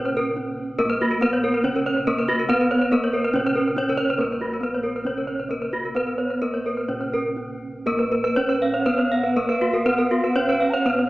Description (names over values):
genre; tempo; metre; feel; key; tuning
gamelan; 120-142 BPM; 4/4; straight; Bb pelog; A4 = 439 Hz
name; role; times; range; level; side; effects
gamelan-type bronze metallophone; melody; 0.0-11.1 s; Bb3 to Db4-30c; -24 LUFS; equal; none
gamelan-type bronze metallophone; accompaniment; 0.0-7.9 s; Db3-30c to Cb4+20c; -34 LUFS; right 1 dB; none
gamelan-type bronze metallophone; arpeggios; 0.0-11.0 s; Gb4-20c to F5-30c; -25 LUFS; left 1 dB; none
gamelan-type bossed gongs; bass; 0.0-11.1 s; Bb1 to Cb5+20c; -32 LUFS; equal; none
gamelan-type bronze metallophone; arpeggios; 0.2-11.1 s; Gb4-20c to Db5-30c; -26 LUFS; right 1 dB; none
breathy bright low xiao; second line; 8.8-11.1 s; F5-36c to Bb5; -27 LUFS; right 1 dB; none
room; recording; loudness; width
moderate concert hall reverb, RT60 2.3 s; small speaker sound; -20 LUFS; side -18 dB against mid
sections
0.0-7.9 A section; 7.9-11.1 B section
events
break 0.2-0.8, 7.1-7.9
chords
none